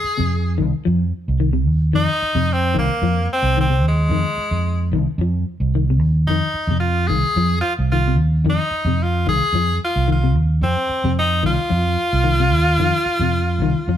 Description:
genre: afrobeat.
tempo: 111 BPM.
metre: 4/4.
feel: straight.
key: F minor.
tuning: A4 = 440 Hz.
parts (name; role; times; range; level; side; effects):
edgy tenor saxophone; melody; 0.0-14.0 s; Ab3 to Ab4; -20 LUFS; equal; none.
fingered electric bass; bass; 0.0-14.0 s; C2 to F2; -19 LUFS; right 1 dB; none.
semi-hollow electric guitar; arpeggios; 0.2-14.0 s; C3 to F3; -23 LUFS; left 5 dB; none.
room: moderate stone room reverb, RT60 1.1 s.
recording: band playing live in one room.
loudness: -16 LUFS.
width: side -10 dB against mid.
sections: 0.0-14.0 A section.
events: none.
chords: 0.0 F7(no3).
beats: 0.31 0.85 1.40 | 1.94 2.48 3.02 3.57 | 4.11 4.65 5.19 5.74 | 6.28 6.82 7.36 7.91 | 8.45 8.99 9.53 10.07 | 10.62 11.16 11.70 12.25 | 12.79 13.33 13.88.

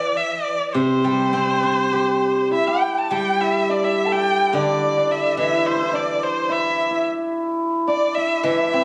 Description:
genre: chinese traditional, Chinese chamber ensemble.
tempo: 106 BPM.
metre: 4/4.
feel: rubato.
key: unclear.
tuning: A4 = 441 Hz.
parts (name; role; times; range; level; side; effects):
clear erhu; melody; 0.0-8.8 s; C5 to A5; -25 LUFS; equal; none.
steel-string zither; accompaniment; 0.0-8.8 s; C3 to G4; -24 LUFS; equal; none.
hammered dulcimer; second line; 2.5-8.8 s; D4 to A4; -26 LUFS; equal; none.
mellow hollow large dizi; second line; 2.5-8.8 s; C5 to A5; -26 LUFS; equal; none.
room: moderate recital hall reverb, RT60 1.6 s.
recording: recorded on a phone in the room, studio reverb, compression.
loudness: -20 LUFS.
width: mono.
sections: 0.0-3.1 A section; 3.1-8.8 B section.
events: none.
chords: none.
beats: 0.18 | 0.75 1.33 1.92 2.52 | 3.12 3.69 4.26 4.83 | 5.39 5.94 6.50 7.05 | 7.61 8.16 8.72.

